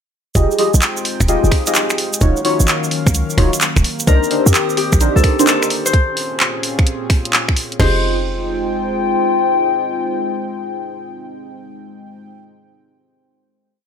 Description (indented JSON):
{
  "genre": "UK garage, two-step garage",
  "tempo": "129 BPM",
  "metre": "4/4",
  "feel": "swing 66% on 16ths",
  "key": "F minor",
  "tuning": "A4 = 440 Hz",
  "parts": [
    { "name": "warm analog pad", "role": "sustained chords", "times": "0.4-12.3 s", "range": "Bb2 to G5", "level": "-27 LUFS", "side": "equal", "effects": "chorus, sidechain pumping" },
    { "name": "deep mellow chord stab", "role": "stabs", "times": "0.4-12.4 s", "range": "D4 to Eb5", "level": "-19 LUFS", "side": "equal", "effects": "chorus, phaser, vintage 12-bit sampler grit, dub echo" },
    { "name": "short 808-style bass", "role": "bass", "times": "0.4-9.2 s", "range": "Eb1 to F2", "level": "-15 LUFS", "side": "equal", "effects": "none" },
    { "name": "garage drum kit", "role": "drums", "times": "0.4-7.9 s", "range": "crash cymbal, kick drum, snare drum", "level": "-16 LUFS", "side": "equal", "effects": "none" },
    { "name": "garage drum kit", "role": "drums", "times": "0.4-7.8 s", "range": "finger snaps, handclaps, hi-hat", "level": "-18 LUFS", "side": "equal", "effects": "none" },
    { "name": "cabasa", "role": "percussion", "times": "0.4-5.9 s", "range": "none", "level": "-22 LUFS", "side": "right 4 dB", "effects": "none" },
    { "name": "warbly tape-like pad", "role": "texture", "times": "0.8-12.3 s", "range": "Eb3 to Eb6", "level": "-22 LUFS", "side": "left 4 dB", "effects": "chorus, built-in reverb, sidechain pumping" },
    { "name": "Celtic harp", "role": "melody", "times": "4.1-12.4 s", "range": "G4 to C5", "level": "-22 LUFS", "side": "left 5 dB", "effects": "dub echo" }
  ],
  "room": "light reverb, digital ambience",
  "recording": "none",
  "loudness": "-14 LUFS",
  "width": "side -7 dB against mid",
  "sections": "0.4-7.8 drop; 7.8-11.5 final chord",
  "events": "drop 0.4-7.8",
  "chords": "0.4 Fm9; 2.2 Ebm9; 3.8 Cm9; 5.9 Bbm9; 7.8 Fm9"
}